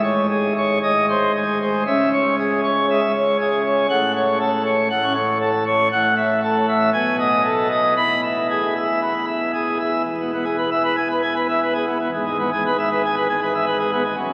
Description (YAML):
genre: classical, organ toccata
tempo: 117 BPM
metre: 4/4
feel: straight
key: C# minor, E major from 5.9 s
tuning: A4 = 440 Hz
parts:
  - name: pipe organ, plenum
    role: solo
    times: 0.0-14.3 s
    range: E1 to B5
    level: -20 LUFS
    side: equal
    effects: none
room: wet cathedral reverb, RT60 6.3 s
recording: very old 78 rpm record, vinyl crackle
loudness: -20 LUFS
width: mono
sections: 0.0-10.1 A section; 10.1-14.3 B section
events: none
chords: 0.0 C#5/G#; 0.8 G#; 1.9 C#m; 3.9 F#m/A; 5.9 F#m7/A; 6.9 B6; 8.0 E; 12.1 E/G#